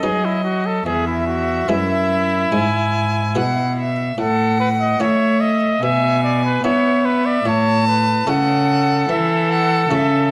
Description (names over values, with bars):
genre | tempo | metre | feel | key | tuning
classical, baroque-style sonata movement with continuo | 73 BPM | 4/4 | straight | E major | A4 = 445 Hz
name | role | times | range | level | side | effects
clear trumpet | melody | 0.0-10.3 s | E4 to E5 | -22 LUFS | equal | none
clear violin | second line | 0.0-10.3 s | D#5 to A5 | -24 LUFS | equal | none
buff-stop harpsichord | accompaniment | 0.0-10.3 s | E2 to E4 | -28 LUFS | equal | none
clear cello | bass | 0.0-10.3 s | E2 to B3 | -22 LUFS | equal | none
room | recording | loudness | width
moderate recital hall reverb, RT60 1.4 s | none | -18 LUFS | mono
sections
0.0-10.3 A section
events
none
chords
0.0 B/F#; 0.9 E; 4.2 A; 5.8 E7/B; 7.5 A